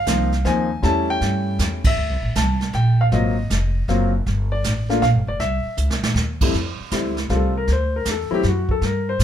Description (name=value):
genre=jazz piano trio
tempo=158 BPM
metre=3/4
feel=swing 66% on 8ths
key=F major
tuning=A4 = 440 Hz
part: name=warm grand piano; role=melody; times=0.0-9.2 s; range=F2 to A5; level=-22 LUFS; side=left 2 dB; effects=none
part: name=upright bass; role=bass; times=0.0-9.2 s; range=F1 to A2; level=-21 LUFS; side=equal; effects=none
part: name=jazz brush drum kit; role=drums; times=0.1-9.2 s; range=brushed snare drum, crash cymbal, hi-hat, kick drum, ride cymbal, snare drum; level=-24 LUFS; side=right 2 dB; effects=none
room=light reverb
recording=minimal, uncompressed stereo recording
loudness=-18 LUFS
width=side -10 dB against mid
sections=0.0-6.5 A section; 6.5-9.2 B section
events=band accent 1.8; drum fill 5.8-6.2; grand piano solo 6.5-9.2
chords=0.0 Ab69; 0.8 A7; 2.0 Dsus2 (rootless); 3.1 Ab13; 4.3 G5; 5.4 C7#9; 6.5 F; 7.7 D7